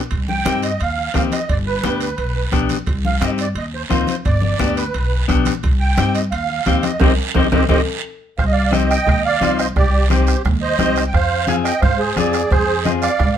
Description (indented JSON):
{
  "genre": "latin, cumbia",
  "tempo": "174 BPM",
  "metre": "4/4",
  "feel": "straight",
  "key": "C harmonic minor",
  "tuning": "A4 = 441 Hz",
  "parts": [
    { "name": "upright bass", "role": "bass", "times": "0.1-13.4 s", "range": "G1 to Ab2", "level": "-20 LUFS", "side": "equal", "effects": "none" },
    { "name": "bombo", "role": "percussion", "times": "0.1-13.4 s", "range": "none", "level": "-21 LUFS", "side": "right 2 dB", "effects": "none" },
    { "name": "congas", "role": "percussion", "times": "0.1-13.4 s", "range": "none", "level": "-25 LUFS", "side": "left 3 dB", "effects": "none" },
    { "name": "guiro", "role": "percussion", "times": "0.1-13.4 s", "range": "none", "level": "-31 LUFS", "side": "right 7 dB", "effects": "none" },
    { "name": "timbales", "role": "percussion", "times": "0.1-7.8 s", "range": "none", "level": "-28 LUFS", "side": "right 2 dB", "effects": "none" },
    { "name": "musette accordion", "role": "melody", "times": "0.3-13.4 s", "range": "G4 to Ab5", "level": "-20 LUFS", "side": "right 4 dB", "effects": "none" },
    { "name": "clean electric guitar", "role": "accompaniment", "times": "0.5-13.1 s", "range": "B3 to Ab4", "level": "-21 LUFS", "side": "left 7 dB", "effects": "none" }
  ],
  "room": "light reverb",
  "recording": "minimal, uncompressed stereo recording",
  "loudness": "-15 LUFS",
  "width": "side -9 dB against mid",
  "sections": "0.0-8.4 A section; 8.4-13.4 B section",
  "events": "drum fill 7.0-8.4; band accent 7.0-8.4",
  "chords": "0.1 Cm; 1.5 G; 2.9 Cm; 4.2 G; 5.6 Cm; 11.1 Fm"
}